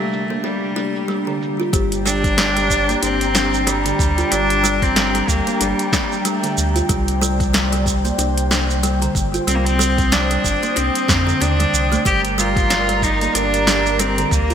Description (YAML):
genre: organic downtempo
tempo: 93 BPM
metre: 4/4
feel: swing 58% on 16ths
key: G minor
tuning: A4 = 440 Hz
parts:
  - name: clear cello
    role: melody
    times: 0.0-14.5 s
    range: G3 to G4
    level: -20 LUFS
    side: equal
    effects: digital delay
  - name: airy breathy pad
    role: sustained chords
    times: 0.0-14.5 s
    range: C3 to Eb6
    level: -24 LUFS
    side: right 1 dB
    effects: chorus, sidechain pumping
  - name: kalimba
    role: arpeggios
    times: 0.0-14.5 s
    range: D3 to F4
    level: -24 LUFS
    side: equal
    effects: ping-pong delay
  - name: bronze singing bowl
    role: texture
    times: 0.0-14.5 s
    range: G3 to Bb5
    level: -33 LUFS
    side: left 4 dB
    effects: none
  - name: deep house drum kit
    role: drums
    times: 0.1-14.5 s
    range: hi-hat, shaker, snare drum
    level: -22 LUFS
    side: right 1 dB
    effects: low-pass filter on perc, low-pass filter on hats, low-pass filter on snare, low-pass filter on room, gated reverb
  - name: warm sub bass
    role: bass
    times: 1.7-14.5 s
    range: G1 to F2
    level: -22 LUFS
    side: equal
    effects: none
  - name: electronic kick drum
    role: drums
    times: 1.7-14.5 s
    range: none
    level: -22 LUFS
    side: equal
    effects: none
room: moderate lush hall reverb, RT60 3.0 s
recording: bright 1980s-style digital production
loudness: -15 LUFS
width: side -8 dB against mid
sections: 0.0-1.7 A section; 1.7-14.5 B section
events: none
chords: 0.0 Csus2; 1.7 Gm; 6.9 Cmadd9; 12.1 Gm